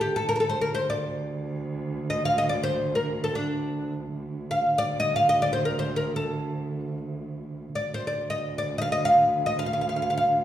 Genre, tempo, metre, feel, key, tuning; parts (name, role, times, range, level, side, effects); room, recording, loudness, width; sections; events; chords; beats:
Turkish makam ensemble; free time; D makam kurdi; A4 = 440 Hz
oud; melody; 0.0-10.2 s; D4 to F5; -24 LUFS; left 1 dB
dark cello; drone; 0.0-10.4 s; D2; -31 LUFS; right 3 dB
wet recital hall reverb, RT60 1.3 s; recorded in a church or concert hall; -24 LUFS; side -11 dB against mid
0.0-4.2 A section; 4.2-10.4 A section
free time